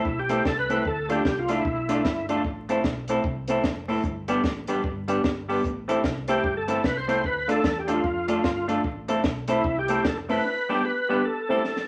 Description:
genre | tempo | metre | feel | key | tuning
ska | 150 BPM | 4/4 | swing 61% on 8ths | A minor | A4 = 441 Hz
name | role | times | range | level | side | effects
overdriven tonewheel organ | melody | 0.0-2.3, 6.3-11.8 s | E4 to C5 | -29 LUFS | equal | chorus vibrato, slow rotary speaker
semi-hollow electric guitar | accompaniment | 0.0-11.6 s | G3 to A4 | -30 LUFS | equal | analog delay
hollow-body short-scale fingered electric bass | bass | 0.0-10.4 s | F1 to F2 | -39 LUFS | equal | none
compact cocktail drum kit | drums | 0.1-11.9 s | hi-hat, kick drum, snare drum | -32 LUFS | equal | analog delay
dark upright piano | stabs | 0.3-11.7 s | B3 to D5 | -33 LUFS | equal | none
room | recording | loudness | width
wet studio reverb, RT60 0.7 s | vinyl crackle | -25 LUFS | mono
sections
0.0-11.9 A section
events
drum fill 11.6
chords
0.0 Am; 0.9 Dm; 2.4 Am; 4.0 G; 5.6 Am; 7.2 Dm; 8.8 Am; 10.4 G; 11.2 Am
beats
0.05 0.45 | 0.85 1.25 1.65 2.05 | 2.45 2.84 3.24 3.64 | 4.04 4.44 4.84 5.24 | 5.64 6.04 6.44 6.84 | 7.24 7.64 8.04 8.44 | 8.84 9.24 9.64 10.04 | 10.44 10.84 11.24 11.64

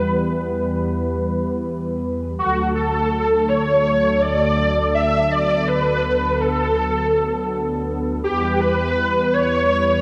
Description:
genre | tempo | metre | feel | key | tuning
synthwave | free time | none | none | unclear | A4 = 444 Hz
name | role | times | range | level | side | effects
unison lead | melody | 0.0-10.0 s | F#4 to E5 | -21 LUFS | equal | ensemble chorus, digital delay
brassy analog pad | sustained chords | 0.0-10.0 s | D2 to B4 | -24 LUFS | equal | chorus
room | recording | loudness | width
wet lush hall reverb, RT60 1.9 s | bright 1980s-style digital production | -20 LUFS | mono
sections
0.0-10.0 A section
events
none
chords
0.0 Em; 2.4 D; 8.2 Em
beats
free time

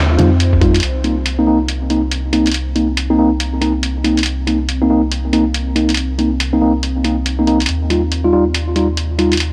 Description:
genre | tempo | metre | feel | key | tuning
deep dubstep | 140 BPM | 4/4 | swing 61% on 16ths, half-time | C minor | A4 = 440 Hz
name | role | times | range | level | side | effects
deep dark ambient pad | sustained chords | 0.0-9.5 s | C4 | -30 LUFS | equal | none
soft dub sub bass | bass | 0.0-9.5 s | C2 to F2 | -21 LUFS | equal | none
mellow tine electric piano | stabs | 0.2-9.3 s | G3 to F4 | -18 LUFS | equal | dub echo
electronic hi-hat | drums | 0.2-9.5 s | none | -22 LUFS | equal | none
electronic kick drum | drums | 0.5-0.7 s | none | -18 LUFS | equal | none
room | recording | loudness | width
light reverb, digital ambience | dry, gritty hardware recording | -15 LUFS | mono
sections
0.8-9.5 A section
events
none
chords
0.0 Ebadd9; 0.8 Cm7; 7.7 Ebadd9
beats
0.40 | 0.83 1.26 1.69 2.12 | 2.54 2.97 3.40 3.83 | 4.26 4.69 5.12 5.54 | 5.97 6.40 6.83 7.26 | 7.69 8.12 8.54 8.97 | 9.40

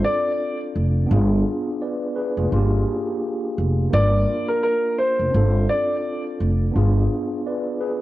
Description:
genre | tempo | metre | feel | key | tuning
hip hop, boom-bap hip-hop | 85 BPM | 4/4 | swing 58% on 16ths | unclear | A4 = 441 Hz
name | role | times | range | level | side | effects
warm upright piano | melody | 0.0-6.2 s | Bb4 to D5 | -22 LUFS | equal | high-pass filter, low-pass filter, cassette tape, analog delay
mellow tine electric piano | accompaniment | 0.0-8.0 s | Bb3 to D5 | -25 LUFS | equal | medium stereo tremolo, high-pass filter, low-pass filter, cassette tape
upright bass | bass | 0.8-7.1 s | F1 to G1 | -19 LUFS | equal | none
room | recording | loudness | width
light reverb, small room ambience | home recording on cassette | -19 LUFS | side -16 dB against mid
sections
0.0-8.0 A section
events
none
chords
0.0 Dm7; 1.1 Fdim7; 2.5 Bb6; 5.3 Dm7/G; 6.7 Fdim7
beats
0.40 | 1.10 1.81 2.51 3.22 | 3.92 4.63 5.34 6.04 | 6.75 7.45

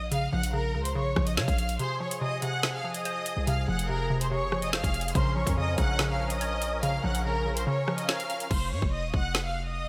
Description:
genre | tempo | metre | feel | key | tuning
hip hop, drill | 143 BPM | 4/4 | half-time | F phrygian | A4 = 439 Hz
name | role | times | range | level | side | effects
warm studio violin section | melody | 0.0-9.9 s | Bb4 to Gb6 | -34 LUFS | equal | none
hollow square pluck | accompaniment | 0.0-8.5 s | C3 to Db5 | -35 LUFS | equal | chorus
distorted 808-style bass | bass | 0.0-9.9 s | Eb1 to Db3 | -34 LUFS | equal | distortion
drill drum kit | drums | 0.1-9.4 s | crash cymbal, hi-hat, kick drum, rim click, snare drum | -32 LUFS | equal | none
musette accordion | sustained chords | 1.8-8.5 s | F3 to Bb4 | -39 LUFS | equal | none
room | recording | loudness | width
moderate lush hall reverb, RT60 1.7 s | bright 1980s-style digital production | -28 LUFS | mono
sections
0.0-8.5 A section; 8.5-9.9 B section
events
break 1.8-2.6; kick muted 7.7-8.5; hi-hats muted 8.5-9.9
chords
0.0 Bbm; 1.8 Fm; 5.2 Bbm; 8.5 F5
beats
| 0.12 0.54 0.95 1.37 | 1.79 2.21 2.63 3.05 | 3.47 3.89 4.31 4.73 | 5.15 5.57 5.99 6.41 | 6.83 7.25 7.67 8.09 | 8.51 8.93 9.35 9.77

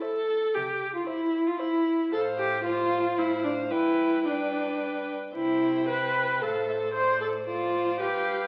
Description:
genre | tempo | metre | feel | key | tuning
quick classical-period movement for string quartet | 113 BPM | 3/4 | straight | C major | A4 = 440 Hz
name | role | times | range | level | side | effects
rich violin | melody | 0.0-8.5 s | D5 to G5 | -41 LUFS | equal | none
warm violin | second line | 0.0-8.5 s | B4 to C5 | -36 LUFS | equal | none
warm viola | accompaniment | 0.0-8.5 s | D4 to C5 | -28 LUFS | equal | none
warm cello | bass | 0.6-8.5 s | G2 to C3 | -46 LUFS | equal | none
room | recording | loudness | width
wet large studio reverb, RT60 1.3 s | very old 78 rpm record, vinyl crackle | -27 LUFS | mono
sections
0.0-8.5 A section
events
none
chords
0.0 C; 2.1 F/A; 3.7 G; 5.3 C; 6.4 F/A; 6.9 Dm7/A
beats
0.02 | 0.55 1.07 1.60 | 2.12 2.64 3.17 | 3.71 4.25 4.80 | 5.34 5.88 6.42 | 6.94 7.47 8.00

